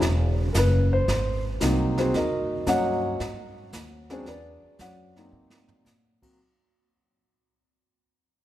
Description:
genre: jazz piano trio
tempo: 113 BPM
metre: 4/4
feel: swing 69% on 8ths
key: unclear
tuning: A4 = 436 Hz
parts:
  - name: upright bass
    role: bass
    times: 0.0-6.4 s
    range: E1 to Bb2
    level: -25 LUFS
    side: equal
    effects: none
  - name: jazz brush drum kit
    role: drums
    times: 0.0-6.3 s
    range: brushed snare drum, crash cymbal, hi-hat, kick drum, snare drum, toms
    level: -34 LUFS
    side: right 2 dB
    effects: none
  - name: dark concert grand piano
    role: melody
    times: 0.5-6.4 s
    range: Gb3 to Gb5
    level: -26 LUFS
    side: left 1 dB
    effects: none
room: moderate cathedral reverb, RT60 5.8 s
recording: recorded in a church or concert hall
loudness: -22 LUFS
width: side -14 dB against mid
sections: 0.0-6.4 A section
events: fade-out 0.0-6.4; drum fill 5.3-5.9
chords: 0.0 Esus2; 1.1 Ab9; 2.1 Ebm7; 3.2 Ab7; 4.3 E13; 5.3 Ab9

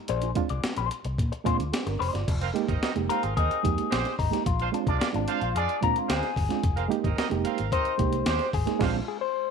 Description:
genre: funk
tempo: 110 BPM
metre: 4/4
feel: straight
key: F dorian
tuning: A4 = 441 Hz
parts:
  - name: electric guitar at the edge of break-up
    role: accompaniment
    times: 0.1-9.5 s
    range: Bb3 to D5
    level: -30 LUFS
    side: left 14 dB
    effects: wah
  - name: vintage muted fingered electric bass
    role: bass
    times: 0.1-9.0 s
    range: F1 to Bb2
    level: -30 LUFS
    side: left 1 dB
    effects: none
  - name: breakbeat sampler-style drum kit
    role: drums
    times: 0.1-9.0 s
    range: crash cymbal, hi-hat, kick drum, snare drum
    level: -30 LUFS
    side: left 1 dB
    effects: none
  - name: mellow reed electric piano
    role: stabs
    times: 0.2-9.0 s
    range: Ab3 to D5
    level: -30 LUFS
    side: right 12 dB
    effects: fast tremolo
  - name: clear horn section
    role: second line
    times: 2.4-9.0 s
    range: Ab3 to F5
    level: -32 LUFS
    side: right 13 dB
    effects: none
room: light reverb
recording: 1960s-style stereo with parts hard left and right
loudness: -24 LUFS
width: side -6 dB against mid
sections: 0.0-2.3 A section; 2.3-9.5 B section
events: clean electric guitar solo 2.3-9.5; band accent 8.8-9.5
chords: 0.1 Bb9; 2.3 Fm11; 4.5 Bb9; 6.6 Fm11; 8.8 Bb9

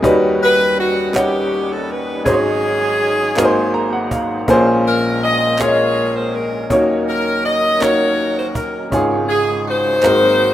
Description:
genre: slow gospel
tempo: 54 BPM (dotted quarters)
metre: 6/8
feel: straight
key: unclear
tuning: A4 = 441 Hz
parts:
  - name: clear upright piano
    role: accompaniment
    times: 0.0-10.5 s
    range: Ab1 to Bb5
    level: -16 LUFS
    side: left 1 dB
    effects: none
  - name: tonewheel organ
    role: sustained chords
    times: 0.0-10.5 s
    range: Ab2 to C5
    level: -27 LUFS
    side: right 4 dB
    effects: slow rotary speaker, overdrive, chorus vibrato
  - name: cajon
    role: drums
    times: 0.0-10.5 s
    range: none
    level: -23 LUFS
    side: right 1 dB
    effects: none
  - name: edgy saxophone section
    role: melody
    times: 0.4-10.5 s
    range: B3 to Eb5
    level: -16 LUFS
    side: equal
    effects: none
  - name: group handclap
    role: percussion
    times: 1.1-10.4 s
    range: none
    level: -29 LUFS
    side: right 4 dB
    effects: none
room: light reverb, studio ambience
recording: rough home demo mix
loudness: -14 LUFS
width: side -12 dB against mid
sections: 0.0-10.5 A section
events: upright piano fill 3.4-4.5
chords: 0.0 Eb7alt; 2.3 Ab7sus4; 3.4 Ab9; 4.5 Bbm9; 6.7 Ebm7; 8.9 Db/Ab; 10.0 Ab9

